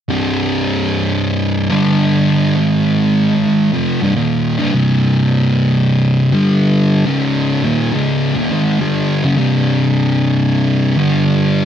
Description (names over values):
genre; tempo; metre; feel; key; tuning
metal; 103 BPM; 4/4; straight; C minor; A4 = 439 Hz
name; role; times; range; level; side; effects
thick fuzz guitar; solo; 0.1-11.7 s; C2 to Ab3; -12 LUFS; equal; distortion
room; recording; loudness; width
moderate studio ambience, RT60 0.5 s; band playing live in one room; -12 LUFS; side -9 dB against mid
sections
0.1-11.7 A section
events
none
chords
0.1 C5; 1.7 G5; 2.6 Ab5; 3.7 Cm; 6.3 G5; 7.1 Db5; 7.6 Cm; 11.0 G5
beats
| 0.09 0.68 1.26 1.84 | 2.42 3.00 3.58 4.17 | 4.75 5.33 5.91 6.49 | 7.07 7.65 8.23 8.81 | 9.39 9.97 10.55 11.13